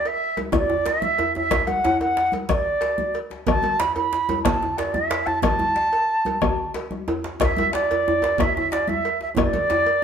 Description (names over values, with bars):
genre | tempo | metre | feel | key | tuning
west african traditional, West African drum ensemble | 122 BPM (dotted quarters) | 12/8 | straight | D major pentatonic | A4 = 440 Hz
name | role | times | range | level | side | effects
baroque flute | melody | 0.0-10.0 s | D5 to B5 | -21 LUFS | right 2 dB | none
cowbell | percussion | 0.1-10.0 s | none | -32 LUFS | right 3 dB | none
djembe | percussion | 0.1-9.8 s | none | -32 LUFS | left 4 dB | none
congas | percussion | 0.4-9.9 s | none | -29 LUFS | right 1 dB | none
bombo | percussion | 0.5-9.5 s | none | -25 LUFS | left 3 dB | none
djembe | percussion | 0.5-9.8 s | none | -27 LUFS | equal | none
room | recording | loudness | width
moderate stone room reverb, RT60 1.0 s | band playing live in one room | -19 LUFS | side -7 dB against mid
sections
0.0-10.0 A section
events
drum fill 9.4-10.0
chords
none